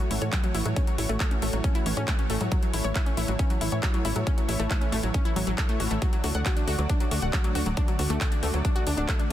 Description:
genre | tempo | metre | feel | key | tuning
uplifting trance | 137 BPM | 4/4 | straight | A major | A4 = 441 Hz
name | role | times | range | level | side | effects
analog string pad | sustained chords | 0.0-9.3 s | D3 to D5 | -33 LUFS | right 1 dB | ensemble chorus, sidechain pumping
wide unison pluck | arpeggios | 0.0-9.2 s | F#3 to F#5 | -31 LUFS | left 2 dB | sidechain pumping, dub echo
big-room dance drum kit | drums | 0.0-9.3 s | handclaps, hi-hat | -34 LUFS | left 1 dB | none
tight sequencer bass | bass | 0.1-9.1 s | D1 to A2 | -28 LUFS | equal | sidechain pumping
electronic kick drum | drums | 0.3-9.2 s | none | -25 LUFS | equal | none
room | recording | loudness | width
digital ambience | dense, heavily limited modern master | -23 LUFS | side -12 dB against mid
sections
0.0-9.3 A section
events
none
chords
0.0 A6; 6.0 D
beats
0.33 | 0.77 1.20 1.64 2.08 | 2.52 2.96 3.39 3.83 | 4.27 4.71 5.14 5.58 | 6.02 6.46 6.90 7.33 | 7.77 8.21 8.65 9.09

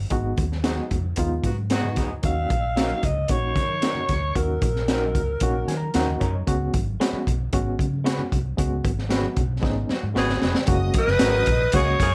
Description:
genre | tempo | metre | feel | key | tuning
uptempo 1960s-style soul | 114 BPM | 4/4 | straight | Eb minor | A4 = 440 Hz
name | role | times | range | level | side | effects
vintage muted fingered electric bass | bass | 0.0-12.1 s | F1 to Eb3 | -29 LUFS | equal | none
barky reed electric piano | accompaniment | 0.1-12.1 s | Gb3 to Bb5 | -30 LUFS | equal | overdrive, fast tremolo
crunchy breakbeat drum kit | drums | 0.1-12.1 s | hi-hat, kick drum, snare drum | -28 LUFS | equal | none
congas | percussion | 0.1-12.1 s | none | -40 LUFS | equal | none
electric guitar through a small old amp | stabs | 0.6-11.4 s | Gb3 to Cb5 | -34 LUFS | equal | tremolo
bright saxophone section | second line | 1.4-2.1, 9.9-12.1 s | Db3 to Ab4 | -32 LUFS | equal | none
growling alto saxophone | melody | 2.3-6.2, 11.0-12.1 s | Bb4 to F5 | -27 LUFS | equal | none
warm symphonic violin section | second line | 10.7-12.1 s | Eb5 to Eb6 | -35 LUFS | equal | none
room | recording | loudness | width
light reverb | none | -23 LUFS | mono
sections
0.0-10.7 A section; 10.7-12.1 B section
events
band accent 0.1-2.2, 8.6-10.7; reed electric piano fill 5.4-6.5; drum fill 9.6-10.7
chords
0.0 Abm7; 2.2 Ebm7; 6.5 Db7sus4; 10.7 Gbadd9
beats
| 0.12 0.65 1.18 1.71 | 2.24 2.77 3.30 3.83 | 4.36 4.89 5.42 5.95 | 6.48 7.00 7.53 8.06 | 8.59 9.11 9.64 10.17 | 10.69 11.22 11.74

